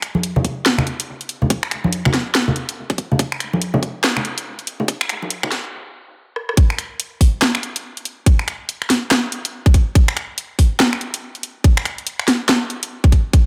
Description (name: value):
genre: dubstep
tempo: 142 BPM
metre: 4/4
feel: swing 61% on 16ths, half-time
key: none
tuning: none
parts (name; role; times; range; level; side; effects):
- garage drum kit; drums; 0.0-13.4 s; finger snaps, handclaps, hi-hat, rim click, snare drum; -22 LUFS; equal; overdrive, high-pass filter on snare, studio reverb, high-pass filter on hats
- congas; percussion; 0.1-5.5 s; none; -23 LUFS; equal; none
- electronic kick drum; drums; 0.4-13.4 s; none; -15 LUFS; equal; overdrive, high-pass filter on kick, studio reverb
room: light reverb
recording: high-pass filter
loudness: -19 LUFS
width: mono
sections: 0.0-6.6 A section; 6.6-13.5 B section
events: build-up 0.0-6.6; filter sweep 0.0-6.6; stop 5.7-6.6; drum fill 6.4; drop 6.6-13.5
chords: none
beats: 0.23 0.66 1.08 | 1.50 1.93 2.35 2.77 | 3.19 3.62 4.04 4.46 | 4.88 5.30 5.73 6.15 | 6.57 7.00 7.42 7.84 | 8.26 8.69 9.11 9.53 | 9.95 10.38 10.80 11.22 | 11.64 12.07 12.49 12.91 | 13.33